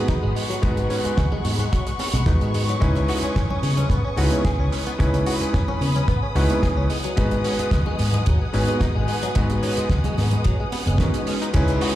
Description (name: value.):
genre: nu-disco, nu disco.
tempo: 110 BPM.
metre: 4/4.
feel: straight.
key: unclear.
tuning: A4 = 441 Hz.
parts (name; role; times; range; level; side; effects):
warm electric grand piano; accompaniment; 0.0-12.0 s; G#3 to B4; -26 LUFS; equal; vintage 12-bit sampler grit, sidechain pumping, analog delay.
dark studio string section; sustained chords; 0.0-12.0 s; G#4 to D#6; -30 LUFS; left 1 dB; sidechain pumping.
direct-recorded clean electric guitar; riff; 0.1-11.9 s; D#3 to G#4; -30 LUFS; left 2 dB; ensemble chorus, analog delay.
damped 70s drum kit; drums; 0.1-11.9 s; crash cymbal, hi-hat, shaker, snare drum; -30 LUFS; right 3 dB; small room reverb.
kick drum; drums; 0.1-11.7 s; none; -21 LUFS; equal; small room reverb.
picked electric bass with an envelope filter; bass; 0.2-11.8 s; F#1 to C#3; -22 LUFS; equal; tube saturation.
congas; percussion; 0.8-11.0 s; none; -32 LUFS; right 2 dB; none.
swell; sound effects; 10.6-11.5 s; none; -34 LUFS; right 4 dB; none.
room: light reverb, small room ambience.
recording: played on a big sound system in a bare room, large studio reverb.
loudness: -19 LUFS.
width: side -13 dB against mid.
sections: 0.0-11.5 A section.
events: swell 10.6-11.5.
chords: 0.0 G#m7; 2.8 C#m9; 6.9 G#m7.